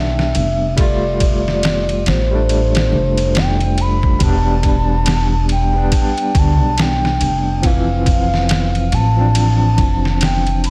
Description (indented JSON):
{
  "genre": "trip hop",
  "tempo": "70 BPM",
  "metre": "4/4",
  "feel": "swing 60% on 16ths",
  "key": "E phrygian",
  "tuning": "A4 = 443 Hz",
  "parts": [
    { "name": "pure breathy sine lead", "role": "melody", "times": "0.0-10.7 s", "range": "C5 to B5", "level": "-23 LUFS", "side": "equal", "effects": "chorus, tape echo" },
    { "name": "barky tine electric piano", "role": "accompaniment", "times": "0.0-10.7 s", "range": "E3 to F4", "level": "-24 LUFS", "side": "equal", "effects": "tremolo, vintage 12-bit sampler grit, tape echo" },
    { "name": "upright bass", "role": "bass", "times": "0.0-10.7 s", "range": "E1 to D2", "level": "-19 LUFS", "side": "equal", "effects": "tube saturation" },
    { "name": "trip hop sampler-style drum kit", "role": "drums", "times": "0.2-10.7 s", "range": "kick drum, ride cymbal, snare drum", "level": "-21 LUFS", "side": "equal", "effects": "none" }
  ],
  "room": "little or no reverb",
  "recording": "none",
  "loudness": "-16 LUFS",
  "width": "mono",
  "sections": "0.0-10.7 A section",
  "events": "none",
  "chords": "0.0 Em7; 0.8 Fadd9; 4.2 Em7; 7.6 Dm7/F",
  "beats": "| 0.78 1.63 2.49 3.35 | 4.20 5.06 5.92 6.78 | 7.63 8.49 9.35 10.20"
}